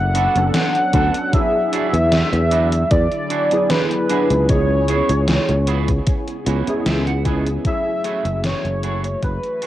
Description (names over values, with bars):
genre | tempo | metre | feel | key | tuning
vaporwave | 76 BPM | 4/4 | straight | F# minor | A4 = 440 Hz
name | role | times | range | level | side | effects
warm velvety synth lead | melody | 0.0-9.7 s | B4 to F#5 | -20 LUFS | equal | chorus, cassette tape, tape echo
warbly lo-fi synth keys | accompaniment | 0.0-9.7 s | F#3 to D5 | -24 LUFS | equal | ensemble chorus, cassette tape
sustaining fretless electric bass | bass | 0.0-9.4 s | F#1 to E2 | -19 LUFS | equal | transformer saturation
clean electric guitar | riff | 0.1-9.7 s | A3 to G#5 | -28 LUFS | right 8 dB | lush chorus, vintage 12-bit sampler grit, cassette tape, tape echo
gated 80s digital drum machine | drums | 0.1-9.7 s | hi-hat, snare drum | -23 LUFS | equal | gated reverb, gated reverb snare, overdrive
electronic kick drum | drums | 0.9-9.4 s | none | -19 LUFS | equal | overdrive
warbly tape-like pad | sustained chords | 2.9-9.7 s | C#3 to G#5 | -32 LUFS | equal | chorus, built-in reverb, phaser, cassette tape
room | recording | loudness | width
light reverb | home recording on cassette | -16 LUFS | side -13 dB against mid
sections
0.0-9.7 A section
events
fade-out 5.5-9.7; clean electric guitar fill 6.1-7.7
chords
0.0 Bm7; 1.3 E9; 4.5 C#m7; 7.7 F#m9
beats
0.55 | 1.33 2.12 2.91 3.70 | 4.49 5.28 6.07 6.86 | 7.65 8.44 9.23